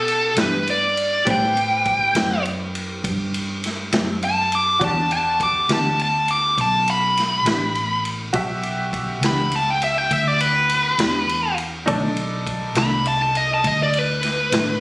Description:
slow blues; 68 BPM (dotted quarters); 12/8; straight; E minor; A4 = 440 Hz
smooth overdriven lead guitar; melody; 0.0-14.8 s; A4 to D6; -18 LUFS; equal
bright upright piano; accompaniment; 0.0-14.8 s; D#4 to E5; -29 LUFS; right 1 dB
vintage muted fingered electric bass; bass; 0.0-14.8 s; A1 to B2; -26 LUFS; equal
vintage drum kit; drums; 0.1-14.7 s; kick drum, ride cymbal, snare drum; -26 LUFS; equal
mellow electric guitar; accompaniment; 0.4-14.7 s; A2 to G4; -25 LUFS; left 1 dB; harmonic tremolo
little or no reverb; recorded on a phone in the room, studio reverb; -17 LUFS; side -22 dB against mid
0.0-14.8 A section
lead electric guitar solo 0.0-14.8; upright piano fill 14.5
0.0 Em7; 1.3 Am7; 4.8 Em7; 11.9 B7#9
0.38 | 1.27 2.15 3.04 3.92 | 4.81 5.69 6.58 7.46 | 8.35 9.23 10.11 11.00 | 11.88 12.76 13.64 14.53

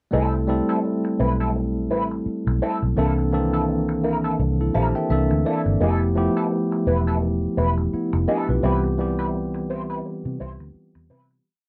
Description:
soul; 85 BPM; 4/4; swing 58% on 16ths; C major; A4 = 437 Hz
tine electric piano; accompaniment; 0.1-11.5 s; Eb3 to A5; -25 LUFS; equal
electric guitar through a small old amp; riff; 0.1-11.3 s; Bb3 to C5; -28 LUFS; equal; wah, harmonic tremolo
vintage muted fingered electric bass; bass; 0.1-11.4 s; E1 to C3; -26 LUFS; equal
little or no reverb; dry, close 1970s-style studio recording; -22 LUFS; mono
0.1-11.4 A section
tine electric piano fill 4.4-5.8; fade-out 8.6-11.4
0.1 C6; 3.0 C13; 5.8 Fmaj9#11; 8.6 Cmaj7
| 0.13 0.84 1.55 2.26 | 2.97 3.68 4.39 5.10 | 5.81 6.51 7.22 7.93 | 8.63 9.34 10.04 10.75

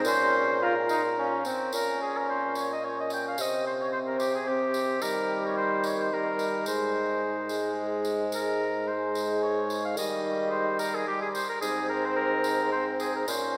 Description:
classical, renaissance-style consort dance; 109 BPM; 3/4; straight; A4 = 441 Hz
brilliant trombone; accompaniment; 0.0-13.6 s; G3 to F4; -34 LUFS; equal
mellow bassoon; bass; 0.0-13.6 s; Ab2 to Eb3; -33 LUFS; equal
tambourine; percussion; 0.0-13.5 s; -43 LUFS; equal
warm oboe; melody; 0.1-13.6 s; G4 to G5; -32 LUFS; equal
wet cathedral reverb, RT60 4.7 s; recorded in a church or concert hall; -28 LUFS; mono
0.0-1.7 A section; 1.7-13.6 B section
0.1 Bbm; 3.4 C5; 5.0 Eb; 6.7 Ab; 10.0 Eb; 11.6 Ab
| 0.06 0.62 1.18 | 1.73 2.28 2.83 | 3.38 3.92 4.47 | 5.02 5.57 6.12 | 6.67 7.22 7.78 | 8.33 8.88 9.43 | 9.98 10.52 11.07 | 11.62 12.16 12.71 | 13.27

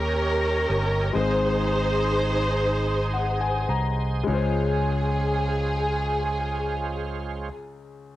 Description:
slow gospel; 33-46 BPM (dotted quarters); 6/8; straight; Db major; A4 = 440 Hz
rich studio string section; melody; 0.0-7.5 s; Db4 to C5; -26 LUFS; equal; cassette tape, plate reverb
warm grand piano; accompaniment; 0.0-8.2 s; Db2 to Bb5; -30 LUFS; left 5 dB
bright tonewheel organ; sustained chords; 0.0-7.5 s; Ab3 to C6; -35 LUFS; right 6 dB; slow rotary speaker, overdrive, chorus vibrato
fingered electric bass; bass; 0.0-7.5 s; G1 to Eb2; -26 LUFS; equal
light reverb; home recording on cassette; -22 LUFS; side -14 dB against mid
0.0-4.3 A section; 4.3-7.9 B section
slowing down 0.0-4.3; grand piano fill 2.6-4.3
0.0 Eb7; 1.1 Ab; 4.3 Dbmaj7
| 1.14 2.60 | 4.28 6.09

